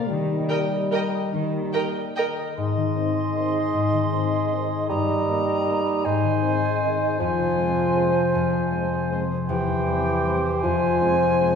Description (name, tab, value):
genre	classical, orchestral ballroom waltz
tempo	138-170 BPM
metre	3/4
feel	rubato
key	Ab major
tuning	A4 = 440 Hz
part	mellow French horn section	sustained chords	0.0-11.5 s	Eb3 to C4	-31 LUFS	left 1 dB	none
part	concert harp	arpeggios	0.0-11.6 s	E2 to F5	-26 LUFS	left 5 dB	none
part	warm studio cello section	bass	0.1-1.7 s	Eb3	-31 LUFS	right 2 dB	none
part	rich studio violin section	melody	0.5-2.2 s	G5	-35 LUFS	equal	none
part	warm symphonic violin section	second line	0.5-2.2 s	Eb5	-36 LUFS	right 1 dB	none
part	warm studio viola section	accompaniment	0.5-2.3 s	Bb4	-28 LUFS	right 4 dB	none
part	bright silver concert flute	second line	2.6-11.6 s	G5 to C6	-29 LUFS	equal	none
part	dark clarinet	second line	2.6-11.6 s	Eb4 to G4	-28 LUFS	right 2 dB	none
part	warm oboe	second line	2.6-11.6 s	C5 to Eb5	-30 LUFS	right 1 dB	none
part	mellow bassoon	accompaniment	2.6-11.6 s	E3 to Ab3	-25 LUFS	right 1 dB	none
room	wet scoring stage reverb, RT60 1.6 s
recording	heard from further back in the room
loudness	-20 LUFS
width	side -6 dB against mid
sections	0.0-2.6 A section; 2.6-11.6 B section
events	none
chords	0.1 Eb; 2.6 Ab; 4.9 Eb/G; 6.0 Ab; 7.2 Fm; 9.5 C/E; 10.6 Fm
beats	| 0.09 0.51 0.93 | 1.33 1.74 2.17 | 2.57 2.95 3.35 | 3.73 4.12 4.52 | 4.89 5.28 5.67 | 6.05 6.43 6.82 | 7.20 7.58 7.98 | 8.35 8.73 9.12 | 9.49 9.87 10.26 | 10.64 11.01 11.41